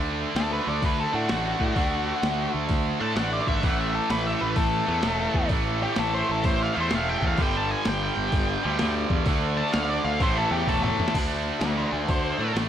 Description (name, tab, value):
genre	blues rock power trio and southern rock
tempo	128 BPM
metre	4/4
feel	swing 66% on 8ths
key	D mixolydian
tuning	A4 = 443 Hz
part	tight distorted guitar	riff	0.0-12.7 s	G2 to D4	-26 LUFS	right 1 dB	distortion
part	fuzz picked electric bass	bass	0.0-12.7 s	E1 to A2	-29 LUFS	equal	overdrive
part	octave-fuzz lead guitar	melody	0.4-12.5 s	F#4 to A5	-29 LUFS	left 2 dB	distortion
part	boom bap sampler-style drum kit	drums	0.4-12.7 s	crash cymbal, hi-hat, kick drum, snare drum, toms	-27 LUFS	equal	none
room	light reverb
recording	none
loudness	-22 LUFS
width	side -10 dB against mid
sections	0.0-11.1 A section; 11.1-12.7 A section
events	lead electric guitar solo 0.0-12.7; drum fill 10.7-11.1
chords	0.0 D; 3.6 A5; 7.4 G5; 9.3 D5; 10.2 A5; 11.1 D7